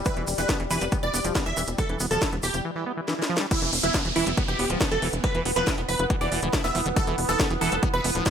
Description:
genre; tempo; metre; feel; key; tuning
psychedelic trance; 139 BPM; 4/4; straight; E phrygian; A4 = 441 Hz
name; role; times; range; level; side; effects
bubbling stepped-filter texture; sustained chords; 0.0-8.3 s; E3 to B3; -32 LUFS; right 2 dB; chorus, built-in reverb, vintage 12-bit sampler grit, sidechain pumping
tight sequencer bass; bass; 0.0-8.2 s; D1 to F1; -30 LUFS; equal; none
supersaw stab; melody; 0.1-8.1 s; E4 to E5; -28 LUFS; right 1 dB; phaser, sidechain pumping, digital delay
liquid acid bass; riff; 0.1-8.3 s; D3 to E4; -32 LUFS; right 1 dB; chorus, auto-pan, sidechain pumping, dub echo
electronic kick drum; drums; 0.1-8.3 s; none; -26 LUFS; equal; overdrive, studio ambience
techno drum kit; drums; 0.1-8.3 s; crash cymbal, hi-hat, snare drum; -29 LUFS; equal; overdrive, studio ambience
tube shaker; percussion; 0.1-2.6 s; none; -34 LUFS; right 2 dB; none
swell and downlifter; sound effects; 2.8-7.0 s; none; -32 LUFS; right 2 dB; none
room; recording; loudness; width
light reverb, digital ambience; none; -22 LUFS; side -8 dB against mid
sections
0.0-3.5 A section; 3.5-8.3 B section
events
break 2.6-3.5; swell 2.8-3.5; drum fill 3.1-3.5; drop 3.5-8.3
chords
0.0 E5

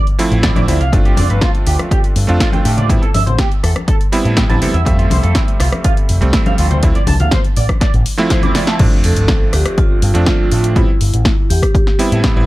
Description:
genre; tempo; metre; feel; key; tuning
nu-disco, nu disco; 122 BPM; 4/4; straight; unclear; A4 = 440 Hz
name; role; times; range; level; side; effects
house drum kit; drums; 0.1-12.3 s; crash cymbal, hi-hat, rim click, snare drum; -21 LUFS; equal; small room ambience
bright electric grand piano; accompaniment; 0.2-12.5 s; F3 to E5; -19 LUFS; right 2 dB; tape echo
picked electric bass with an envelope filter; bass; 0.3-12.5 s; F1 to A2; -15 LUFS; equal; tube saturation
electric guitar through a small old amp; riff; 0.4-8.7 s; D4 to D6; -23 LUFS; right 3 dB; analog chorus, tape echo
electronic kick drum; drums; 0.4-12.3 s; none; -15 LUFS; equal; small room ambience
congas; percussion; 0.6-8.7 s; none; -23 LUFS; left 3 dB; none
sub drop; sound effects; 8.9-10.8 s; none; -24 LUFS; equal; none
vibraphone with medium hard mallets; melody; 9.1-12.2 s; E4 to A4; -21 LUFS; right 1 dB; tape echo
room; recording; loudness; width
digital ambience; none; -11 LUFS; side -17 dB against mid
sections
0.0-8.8 A section; 8.8-12.5 B section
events
drum fill 7.8-8.8; drop 8.8-12.5; impact 8.8-10.8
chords
0.0 Dm7; 0.9 G7sus4; 2.9 Am9; 4.9 Fmaj7; 6.8 Dm7; 8.8 G7sus4; 10.8 Am9

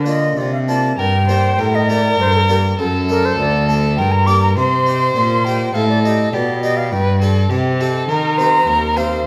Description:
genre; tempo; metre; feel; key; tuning
classical, baroque-style sonata movement with continuo; 101 BPM; 3/4; rubato; G minor; A4 = 435 Hz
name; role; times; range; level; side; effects
concert flute; melody; 0.0-9.3 s; A4 to D6; -21 LUFS; equal; none
warm violin; second line; 0.0-9.3 s; D4 to C5; -23 LUFS; equal; none
harpsichord; accompaniment; 0.0-9.2 s; D2 to G4; -26 LUFS; equal; none
warm cello; bass; 0.0-9.3 s; D2 to Eb3; -20 LUFS; equal; none
room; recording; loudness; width
wet recital hall reverb, RT60 1.5 s; none; -16 LUFS; mono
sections
1.0-9.3 A section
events
none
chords
0.0 Bb; 1.0 Gm; 2.8 D/F#; 4.0 Gm; 4.6 Cm; 6.3 G/B; 7.5 Cm; 8.1 Cm7/Eb

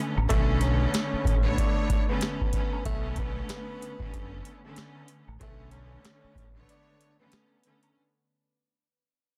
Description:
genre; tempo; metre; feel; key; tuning
hip hop, boom-bap hip-hop; 94 BPM; 4/4; swing 59% on 16ths; B minor; A4 = 441 Hz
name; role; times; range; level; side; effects
rich studio string section; accompaniment; 0.0-8.0 s; D3 to C#5; -35 LUFS; equal; cassette tape, plate reverb
deep dub fingered electric bass; bass; 0.2-6.6 s; F#1 to B1; -31 LUFS; equal; none
woodblock and tube shaker; percussion; 0.2-8.0 s; none; -46 LUFS; equal; none
breathy tenor saxophone; melody; 0.3-7.9 s; A3 to D4; -38 LUFS; equal; plate reverb, tape echo
booming analog drum machine; drums; 0.3-8.0 s; hi-hat, kick drum, rim click, snare drum; -31 LUFS; equal; none
room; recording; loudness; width
light reverb; dense, heavily limited modern master; -27 LUFS; mono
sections
0.0-8.0 A section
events
fade-out 0.0-8.0; break 6.7-8.0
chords
0.0 Bm9

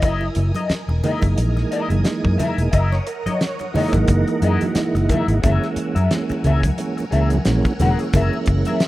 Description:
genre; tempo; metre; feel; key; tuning
funk; 89 BPM; 4/4; swing 56% on 16ths; unclear; A4 = 440 Hz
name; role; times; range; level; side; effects
electric guitar at the edge of break-up; accompaniment; 0.0-8.8 s; E4 to F#5; -26 LUFS; left 5 dB; wah
phased string machine; sustained chords; 0.0-8.9 s; A#4 to E6; -33 LUFS; equal; ensemble chorus, phaser
tonewheel organ; stabs; 0.0-8.8 s; E3 to E5; -23 LUFS; right 3 dB; chorus vibrato, slow rotary speaker
vintage muted fingered electric bass; bass; 0.0-8.6 s; E1 to F#2; -19 LUFS; equal; none
damped 70s drum kit; drums; 0.0-8.9 s; hi-hat, kick drum, snare drum; -23 LUFS; equal; none
congas; percussion; 0.0-8.8 s; none; -27 LUFS; right 1 dB; none
room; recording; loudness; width
light reverb, small room ambience; rough home demo mix; -17 LUFS; side -16 dB against mid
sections
0.0-5.4 A section; 5.4-8.9 B section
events
tonewheel organ solo 0.0-5.4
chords
0.0 F#13; 5.4 F#9

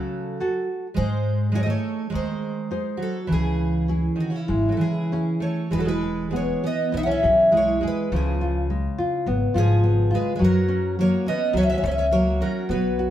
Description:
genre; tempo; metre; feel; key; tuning
fado-style ballad; 103 BPM; 4/4; rubato; C# minor, E major from 5.7 s; A4 = 440 Hz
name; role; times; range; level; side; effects
picked twelve-string acoustic guitar; melody; 0.0-13.1 s; E4 to F#5; -25 LUFS; equal; none
fingerpicked twelve-string acoustic guitar; second line; 0.0-13.1 s; C#3 to D#4; -26 LUFS; right 2 dB; none
nylon-string guitar; accompaniment; 0.0-13.1 s; C#3 to D#5; -26 LUFS; left 1 dB; none
upright bass; bass; 1.0-13.1 s; E1 to G#2; -24 LUFS; equal; none
room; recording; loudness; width
moderate stone room reverb, RT60 1.1 s; band playing live in one room; -20 LUFS; side -11 dB against mid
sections
0.0-5.7 A section; 5.7-13.1 B section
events
none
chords
0.0 F#madd9; 1.0 G#; 3.3 C#m; 5.7 E; 8.1 C#7; 10.4 F#

